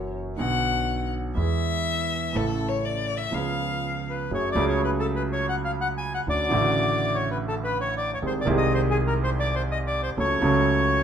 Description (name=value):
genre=tango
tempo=123 BPM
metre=4/4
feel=rubato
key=unclear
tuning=A4 = 440 Hz
part: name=warm violin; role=second line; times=0.0-4.1 s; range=A4 to F#5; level=-28 LUFS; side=left 6 dB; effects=none
part: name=warm grand piano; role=accompaniment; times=0.0-11.0 s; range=A1 to A4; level=-26 LUFS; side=right 2 dB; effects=none
part: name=upright bass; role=bass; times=0.0-11.0 s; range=F#1 to E2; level=-30 LUFS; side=equal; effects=none
part: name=bandoneon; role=melody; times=4.1-11.0 s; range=G#4 to G#5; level=-26 LUFS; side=left 1 dB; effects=none
room=moderate large studio reverb, RT60 0.9 s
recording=minimal, uncompressed stereo recording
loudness=-22 LUFS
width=side -8 dB against mid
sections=0.0-4.3 A section; 4.3-11.0 B section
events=violin solo 0.0-4.3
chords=0.4 Bm; 1.4 E; 2.3 A; 3.3 C#7; 4.3 F#madd9; 6.3 Dmaj7; 8.2 G#/B#; 10.2 F#m/C#